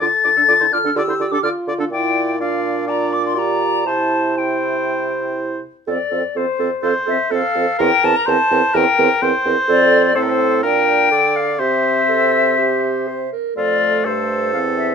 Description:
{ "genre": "quick classical-period movement for wind quintet", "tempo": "125 BPM", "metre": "4/4", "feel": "rubato", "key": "F major", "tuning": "A4 = 440 Hz", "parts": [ { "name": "silver concert flute", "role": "melody", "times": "0.0-14.9 s", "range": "Bb4 to A6", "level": "-17 LUFS", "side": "left 5 dB", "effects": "none" }, { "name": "clear oboe", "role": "second line", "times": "0.0-14.9 s", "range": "F4 to D5", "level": "-22 LUFS", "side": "equal", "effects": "none" }, { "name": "dark clarinet", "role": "accompaniment", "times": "0.0-14.9 s", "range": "D4 to C5", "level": "-23 LUFS", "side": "right 9 dB", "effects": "none" }, { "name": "warm French horn", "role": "accompaniment", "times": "0.0-14.9 s", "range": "A3 to A4", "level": "-25 LUFS", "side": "right 2 dB", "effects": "none" }, { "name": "mellow bassoon", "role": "bass", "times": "0.0-14.9 s", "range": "E2 to D3", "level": "-23 LUFS", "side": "right 2 dB", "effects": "none" } ], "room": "light reverb", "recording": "minimal, uncompressed stereo recording", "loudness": "-14 LUFS", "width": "side -6 dB against mid", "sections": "0.0-5.9 A section; 5.9-14.9 B section", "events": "none", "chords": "0.0 Dm; 1.9 Gm7/Bb; 3.9 C; 5.9 F; 7.8 C7/E; 9.7 F; 10.6 Bb; 11.6 C; 13.6 F", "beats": "| 0.02 0.49 0.96 1.44 | 1.92 2.40 2.88 3.36 | 3.86 4.37 4.88 5.38 | 5.87 6.36 6.84 7.32 | 7.80 8.28 8.75 9.22 | 9.69 10.15 10.64 11.12 | 11.60 12.09 12.58 13.07 | 13.56 14.05 14.53" }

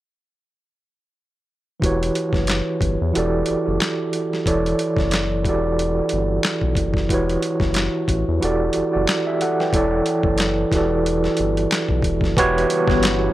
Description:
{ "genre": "R&B, neo-soul", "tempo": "91 BPM", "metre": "4/4", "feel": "swing 56% on 16ths", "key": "E dorian", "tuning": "A4 = 440 Hz", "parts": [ { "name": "overdriven tine electric piano", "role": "accompaniment", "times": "1.8-13.3 s", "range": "E3 to G5", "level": "-20 LUFS", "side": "right 2 dB", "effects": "medium tremolo, analog delay" }, { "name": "round analog bass", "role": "bass", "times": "1.8-13.3 s", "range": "E1 to E2", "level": "-24 LUFS", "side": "left 1 dB", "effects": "none" }, { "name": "boom bap sampler-style drum kit", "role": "drums", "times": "1.8-13.2 s", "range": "handclaps, hi-hat, kick drum, snare drum", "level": "-23 LUFS", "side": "left 1 dB", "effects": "none" }, { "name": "warm analog pad", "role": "sustained chords", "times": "12.6-13.3 s", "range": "C#3 to F#5", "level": "-26 LUFS", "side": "left 5 dB", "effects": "chorus" } ], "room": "digital ambience", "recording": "echo-heavy mix", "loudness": "-18 LUFS", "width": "side -15 dB against mid", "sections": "1.8-12.4 A section", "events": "none", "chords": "1.8 Em69; 3.1 Em11; 4.5 E13sus4; 5.4 Em11; 7.1 A13/E (rootless); 8.4 Em11; 9.7 E13sus4; 10.7 Em11; 12.4 Em69", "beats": "| 1.82 2.48 3.14 3.80 | 4.46 5.12 5.77 6.43 | 7.09 7.75 8.41 9.07 | 9.73 10.39 11.05 11.71 | 12.37 13.03" }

